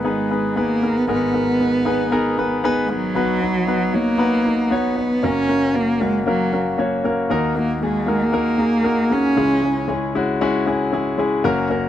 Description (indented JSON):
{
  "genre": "pop",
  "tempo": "116 BPM",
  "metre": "4/4",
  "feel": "straight",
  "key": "G# minor",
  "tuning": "A4 = 439 Hz",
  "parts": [
    { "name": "warm cello", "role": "melody", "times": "0.0-9.9 s", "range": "F#3 to C#4", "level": "-20 LUFS", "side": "right 2 dB", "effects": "none" },
    { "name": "clear concert grand piano", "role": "accompaniment", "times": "0.0-11.9 s", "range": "F#1 to C#5", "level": "-19 LUFS", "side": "left 2 dB", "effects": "none" }
  ],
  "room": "light reverb",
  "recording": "dry, close 1970s-style studio recording",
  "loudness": "-17 LUFS",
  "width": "side -11 dB against mid",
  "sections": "0.0-7.3 A section; 7.3-11.9 B section",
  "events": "none",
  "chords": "0.0 G#m; 3.2 B; 5.2 F#; 7.3 D#m; 9.4 C#m"
}